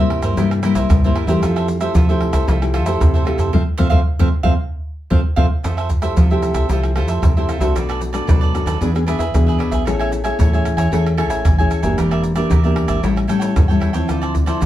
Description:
samba and choro; 114 BPM; 4/4; straight; F major; A4 = 440 Hz
cavaquinho; accompaniment; 0.0-14.7 s; D4 to G#5; -24 LUFS; right 3 dB
nylon-string guitar; accompaniment; 0.0-14.7 s; F#2 to G#4; -20 LUFS; left 2 dB
woody fretless electric bass; bass; 0.0-14.7 s; E1 to F3; -20 LUFS; equal
pandeiro, tamborim, maracas and surdo; percussion; 0.1-14.7 s; -18 LUFS; equal
wet studio reverb, RT60 0.6 s; heard from further back in the room; -14 LUFS; side -13 dB against mid
0.0-5.6 A section; 5.6-14.7 B section
band accent 3.5-5.6; drum fill 5.2-5.6
0.0 C7; 1.4 Fmaj9; 7.8 Bm7; 8.8 E7; 9.9 Amaj7; 12.0 Em7b5; 13.0 A7; 14.1 Dm9

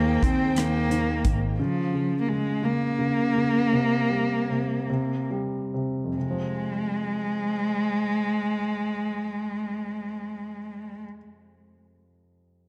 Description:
six-eight pop ballad; 44-59 BPM (dotted quarters); 6/8; straight; F minor; A4 = 444 Hz
rich cello; melody; 0.0-11.0 s; F3 to C4; -28 LUFS; equal
warm baby grand piano; accompaniment; 0.0-12.7 s; F2 to G3; -30 LUFS; equal
warm studio string section; sustained chords; 0.0-1.6 s; Eb4 to G5; -38 LUFS; equal
upright bass; bass; 0.0-1.6 s; Ab1 to Eb2; -32 LUFS; equal
modern studio drum kit; drums; 0.2-1.4 s; hi-hat, kick drum, rim click; -28 LUFS; equal
moderate echo chamber reverb, RT60 2.3 s; dark, warm production; -26 LUFS; mono
0.0-6.2 A section; 6.2-11.5 B section
slowing down 1.6-6.2
0.0 Abmaj7/Eb; 1.6 N.C.; 3.7 C5; 6.2 Fm

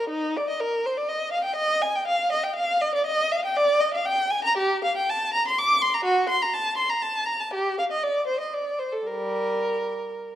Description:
classical, baroque-style suite movement for unaccompanied violin; 120 BPM; 3/4; uneven beats, rubato; G minor from 4.6 s; A4 = 438 Hz
warm violin; solo; 0.0-10.4 s; G3 to D6; -22 LUFS; equal
moderate recital hall reverb, RT60 1.4 s; dark, warm production; -22 LUFS; side -12 dB against mid
0.0-10.4 A section

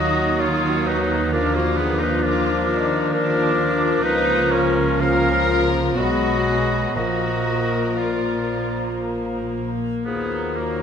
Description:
classical, slow romantic movement for symphony orchestra; 56-67 BPM; 3/4; rubato; A4 = 441 Hz
rich studio violin section; melody; 0.0-10.8 s; Bb3 to Bb4; -30 LUFS; left 5 dB
bright large flute ensemble; second line; 0.0-10.8 s; Bb5 to Eb6; -30 LUFS; left 1 dB
clear oboe; second line; 0.0-10.8 s; Bb3 to Bb4; -28 LUFS; right 2 dB
dark studio violin section; second line; 0.0-9.5 s; Bb3 to Bb4; -31 LUFS; left 2 dB
warm clarinet; second line; 0.0-10.8 s; Gb4 to F5; -25 LUFS; left 2 dB
mellow bassoon; accompaniment; 0.0-10.8 s; F3 to Gb3; -28 LUFS; right 1 dB
warm studio viola section; accompaniment; 0.0-10.8 s; F3 to B3; -28 LUFS; right 2 dB
mellow French horn section; sustained chords; 0.0-10.8 s; F3 to F#4; -26 LUFS; left 6 dB
warm studio cello section; bass; 0.0-10.8 s; Bb2 to Eb3; -30 LUFS; right 4 dB
warm studio double bass section; bass; 0.0-10.8 s; Bb1 to Eb2; -28 LUFS; right 2 dB
timpani; percussion; 7.0-8.5 s; Bb2; -37 LUFS; left 1 dB
moderate scoring stage reverb, RT60 1.5 s; -18 LUFS; side -7 dB against mid
0.0-10.8 A section
0.0 Ebm; 1.3 Bb/Eb; 4.0 Bbm/Db; 6.0 B6; 7.0 Bb; 10.1 Ebm

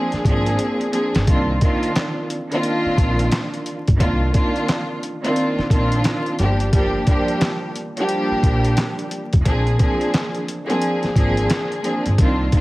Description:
hip hop, boom-bap hip-hop; 88 BPM; 4/4; swing 63% on 16ths; C minor; A4 = 439 Hz
warm studio string section; accompaniment; 0.0-12.6 s; Eb3 to Ab4; -20 LUFS; equal; high-pass filter, low-pass filter
upright bass; bass; 0.1-12.5 s; F1 to C2; -22 LUFS; equal
boom bap sampler-style drum kit; drums; 0.1-12.6 s; handclaps, hi-hat, kick drum, snare drum; -20 LUFS; equal; vintage 12-bit sampler grit
light reverb; heavily compressed radio sound, vinyl crackle; -17 LUFS; side -19 dB against mid
0.0-1.3 A section; 1.3-12.6 A section
drum fill 0.6-1.3
0.0 Bb9; 1.3 Cm11; 6.4 Gm7; 9.5 Bb9

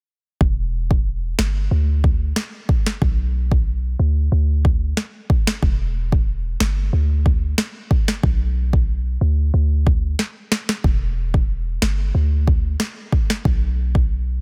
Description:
dancehall; 92 BPM; 4/4; straight; A4 = 439 Hz
warm 808-style bass; bass; 0.4-14.4 s; E1 to D2; -22 LUFS; equal
afro-pop drum kit; drums; 0.4-14.1 s; kick drum, snare drum; -21 LUFS; equal
little or no reverb; dense, heavily limited modern master; -20 LUFS; mono
0.4-14.4 A section
drum fill 10.2-10.8

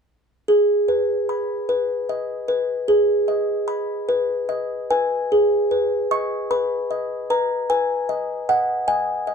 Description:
classical, lullaby for music box; 50 BPM (dotted quarters); 6/8; straight; G# minor; A4 = 439 Hz
music box; solo; 0.5-9.3 s; G#4 to C#6; -19 LUFS; equal
light reverb; dark, warm production; -19 LUFS; side -6 dB against mid
0.5-5.3 A section; 5.3-9.3 B section
0.5 G#m; 7.7 G#m/B

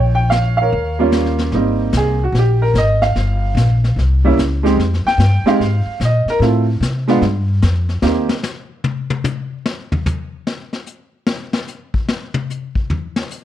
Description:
jazz piano trio; 148 BPM; 4/4; swing 65% on 8ths; Ab major; A4 = 440 Hz
warm upright piano; melody; 0.0-8.3 s; G3 to G5; -16 LUFS; right 2 dB
upright bass; bass; 0.0-8.3 s; G1 to C3; -16 LUFS; left 1 dB
vintage brush drum kit; drums; 0.3-13.4 s; brushed snare drum, hi-hat, kick drum, snare drum, toms; -21 LUFS; left 3 dB
little or no reverb; dark, warm production; -14 LUFS; side -12 dB against mid
0.0-1.5 A section; 1.5-13.4 B section
upright piano solo 1.5-13.4; drum solo 8.0-13.4
0.0 Bbm; 0.7 Eb7; 1.5 Abmaj9; 3.2 Gm7; 4.0 C5; 4.8 Fm9; 6.4 Dm7 (rootless); 7.2 Fsus2; 8.0 N.C.

